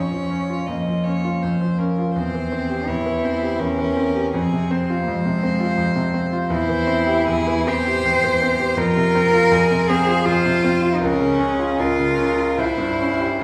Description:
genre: classical, slow romantic movement for piano trio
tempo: 70-85 BPM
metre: 3/4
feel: rubato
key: F minor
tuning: A4 = 440 Hz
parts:
  - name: rich violin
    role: melody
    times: 0.0-13.4 s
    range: F4 to Eb5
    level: -29 LUFS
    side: equal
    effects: none
  - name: warm cello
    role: second line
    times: 0.0-13.4 s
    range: Ab3 to C5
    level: -23 LUFS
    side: equal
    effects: none
  - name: bright concert grand piano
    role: accompaniment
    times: 0.0-13.4 s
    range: C2 to G4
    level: -23 LUFS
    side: equal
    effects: none
room: wet recital hall reverb, RT60 1.4 s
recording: recorded in a church or concert hall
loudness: -20 LUFS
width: mono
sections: 0.0-13.4 A section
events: none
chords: 0.0 Bbm/F; 2.2 C7/E; 4.3 Fm; 6.5 C/E; 8.8 F5; 11.0 Bbm/Db; 12.6 C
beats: 0.68 1.42 | 2.15 2.88 3.60 | 4.33 5.07 5.78 | 6.50 7.27 8.06 | 8.78 9.52 10.27 | 11.02 11.80 12.59 | 13.42

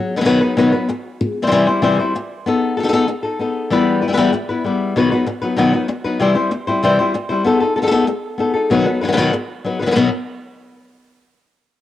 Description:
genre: flamenco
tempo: 192 BPM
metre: 4/4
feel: straight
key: B phrygian dominant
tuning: A4 = 440 Hz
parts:
  - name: flamenco guitar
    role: solo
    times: 0.0-10.1 s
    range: B2 to C5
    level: -15 LUFS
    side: left 2 dB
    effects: cassette tape
room: wet spring reverb, RT60 1.7 s, studio ambience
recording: home recording on cassette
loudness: -15 LUFS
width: side -13 dB against mid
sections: 0.0-10.0 A section; 10.0-11.2 B section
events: none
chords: 0.0 B; 1.2 C; 2.5 B7; 3.7 Em; 5.0 B; 6.2 C; 7.5 B7; 8.7 B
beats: 0.26 0.58 0.89 | 1.21 1.52 1.84 2.15 | 2.46 2.78 3.09 3.40 | 3.72 4.03 4.34 4.65 | 4.96 5.28 5.59 5.90 | 6.21 6.53 6.84 7.15 | 7.46 7.77 8.08 8.40 | 8.71 9.02 9.33 9.64 | 9.96

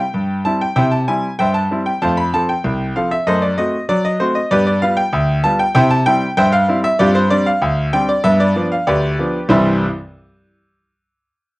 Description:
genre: ragtime piano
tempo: 96 BPM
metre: 2/4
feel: straight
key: C major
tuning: A4 = 438 Hz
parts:
  - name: bright grand piano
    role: solo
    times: 0.0-9.9 s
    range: C2 to B5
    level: -14 LUFS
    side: equal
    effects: none
room: light reverb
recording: dry, close 1970s-style studio recording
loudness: -13 LUFS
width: side -20 dB against mid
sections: 0.0-9.5 A section; 9.5-10.8 B section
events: none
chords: 0.0 C; 2.0 F; 3.3 F#dim; 4.5 G7; 5.8 C; 7.0 G7sus4; 8.2 G7; 9.5 C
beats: 0.15 | 0.77 1.40 | 2.02 2.64 | 3.27 3.89 | 4.51 5.13 | 5.75 6.37 | 7.00 7.62 | 8.25 8.87 | 9.51

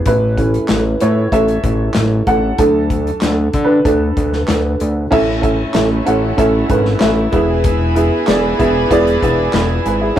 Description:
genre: piano-driven pop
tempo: 95 BPM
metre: 4/4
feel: straight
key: A major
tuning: A4 = 440 Hz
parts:
  - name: warm upright piano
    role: accompaniment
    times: 0.0-10.2 s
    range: A2 to B5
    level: -16 LUFS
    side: right 1 dB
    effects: none
  - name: fat analog bass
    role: bass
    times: 0.1-10.1 s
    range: E1 to D3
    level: -17 LUFS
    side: left 1 dB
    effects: none
  - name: modern studio drum kit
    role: drums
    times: 0.1-10.2 s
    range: crash cymbal, handclaps, hi-hat, kick drum, snare drum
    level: -19 LUFS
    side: left 1 dB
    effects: none
  - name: dark studio string section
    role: sustained chords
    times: 5.1-10.2 s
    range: E3 to B4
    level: -21 LUFS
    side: equal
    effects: none
room: moderate studio ambience, RT60 0.5 s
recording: rough rehearsal-room recording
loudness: -12 LUFS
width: side -11 dB against mid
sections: 0.0-5.1 A section; 5.1-10.2 B section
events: upright piano solo 0.0-5.1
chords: 0.1 A; 2.6 D; 5.1 A; 7.3 E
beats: | 0.07 0.70 1.33 1.96 | 2.59 3.23 3.86 4.49 | 5.12 5.75 6.38 7.01 | 7.65 8.28 8.91 9.54 | 10.17

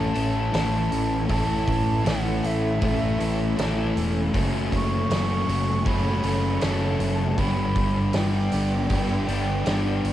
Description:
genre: rock, shoegaze and dream pop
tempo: 79 BPM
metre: 4/4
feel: straight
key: A mixolydian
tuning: A4 = 441 Hz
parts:
  - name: mellow hollow jazz flute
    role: melody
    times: 0.0-10.0 s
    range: E5 to C#6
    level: -31 LUFS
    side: right 2 dB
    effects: cassette tape, analog delay
  - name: soft additive organ-like pad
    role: sustained chords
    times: 0.0-10.1 s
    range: A4 to D6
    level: -38 LUFS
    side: equal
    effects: ensemble chorus, built-in reverb
  - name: crunchy overdriven guitar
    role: riff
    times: 0.0-10.1 s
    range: F#2 to E4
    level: -26 LUFS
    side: left 5 dB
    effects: wide subtle chorus
  - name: crunchy overdriven guitar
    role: riff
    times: 0.0-10.1 s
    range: F#2 to A4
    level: -29 LUFS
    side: right 7 dB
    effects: reverse reverb
  - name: growling picked electric bass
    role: bass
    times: 0.0-10.1 s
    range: E1 to A1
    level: -27 LUFS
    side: equal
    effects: overdrive, tube saturation
  - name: loose indie drum kit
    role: drums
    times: 0.2-10.1 s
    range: hi-hat, kick drum, snare drum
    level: -29 LUFS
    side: equal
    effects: cassette tape
room: light reverb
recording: home recording on cassette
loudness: -21 LUFS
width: side -12 dB against mid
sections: 0.0-10.1 A section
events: none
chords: 0.0 Aadd9; 4.3 F#m; 7.4 G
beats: 0.53 | 1.29 2.05 2.81 3.57 | 4.33 5.09 5.85 6.62 | 7.38 8.14 8.90 9.66

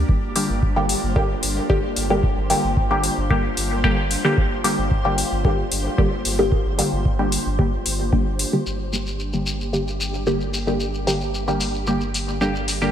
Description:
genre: dub techno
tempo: 112 BPM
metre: 4/4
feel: straight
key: G minor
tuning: A4 = 442 Hz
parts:
  - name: airy breathy pad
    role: sustained chords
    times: 0.0-12.9 s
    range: Bb3 to G4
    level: -30 LUFS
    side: right 1 dB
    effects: chorus, sidechain pumping
  - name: soft dub sub bass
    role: bass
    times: 0.0-12.9 s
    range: G1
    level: -26 LUFS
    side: equal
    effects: sidechain pumping
  - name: flickering grainy texture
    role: texture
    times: 0.0-12.9 s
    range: G3 to C5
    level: -33 LUFS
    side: right 1 dB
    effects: built-in reverb, lush chorus, sidechain pumping
  - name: electronic kick drum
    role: drums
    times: 0.1-8.2 s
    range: none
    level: -21 LUFS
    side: equal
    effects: none
  - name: filtered dub chord stab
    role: stabs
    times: 0.4-12.9 s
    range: D3 to G4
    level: -22 LUFS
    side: equal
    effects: chorus, phaser, sidechain pumping, dub echo
  - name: electronic hi-hat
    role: drums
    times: 0.4-12.8 s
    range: none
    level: -26 LUFS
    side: left 2 dB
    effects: low-pass filter on hats
  - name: shekere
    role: percussion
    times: 8.7-12.9 s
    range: none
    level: -30 LUFS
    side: left 2 dB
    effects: none
room: moderate lush hall reverb, RT60 1.9 s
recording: bright 1980s-style digital production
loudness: -19 LUFS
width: side -10 dB against mid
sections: 0.0-8.7 A section; 8.7-12.9 B section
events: none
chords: 0.0 Gm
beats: | 0.09 0.63 1.16 1.70 | 2.23 2.77 3.31 3.84 | 4.38 4.91 5.45 5.98 | 6.52 7.05 7.59 8.13 | 8.66 9.20 9.73 10.27 | 10.80 11.34 11.88 12.41

